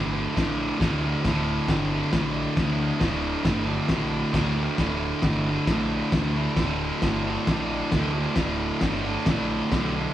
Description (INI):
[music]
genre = garage rock duo or trio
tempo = 134 BPM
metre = 4/4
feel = straight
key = unclear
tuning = A4 = 441 Hz
[part]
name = fuzz guitar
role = riff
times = 0.0-10.1 s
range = D2 to D3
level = -25 LUFS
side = right 1 dB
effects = distortion
[part]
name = growling picked electric bass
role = bass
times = 0.0-10.1 s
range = D1 to D2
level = -31 LUFS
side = equal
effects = overdrive, tube saturation
[part]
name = cloth-damped thuddy drum kit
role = drums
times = 0.4-9.8 s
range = crash cymbal, kick drum, snare drum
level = -27 LUFS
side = equal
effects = none
[sound]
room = moderate large studio reverb, RT60 1.2 s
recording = band playing live in one room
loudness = -22 LUFS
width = side -12 dB against mid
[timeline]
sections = 0.0-10.1 A section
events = none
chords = 0.0 D5